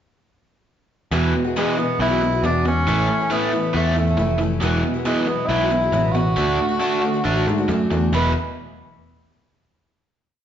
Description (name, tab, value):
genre	folk rock and heartland rock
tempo	137 BPM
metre	4/4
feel	straight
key	E mixolydian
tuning	A4 = 438 Hz
part	picked twelve-string acoustic guitar	accompaniment	1.1-8.3 s	E2 to F#4	-26 LUFS	left 1 dB	none
part	overdriven electric guitar	riff	1.1-8.3 s	E2 to E4	-23 LUFS	right 1 dB	none
part	picked electric bass	bass	1.1-8.3 s	E1 to G#2	-22 LUFS	equal	none
part	warm tenor saxophone	melody	1.6-8.3 s	G#3 to B4	-22 LUFS	equal	none
room	wet large studio reverb, RT60 1.4 s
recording	band playing live in one room, nothing above 7.7 kHz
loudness	-17 LUFS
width	side -9 dB against mid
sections	1.1-8.1 verse; 8.1-9.9 final chord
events	none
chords	1.1 Eadd9; 2.9 A; 4.6 Eadd9; 6.4 D; 8.1 Eadd9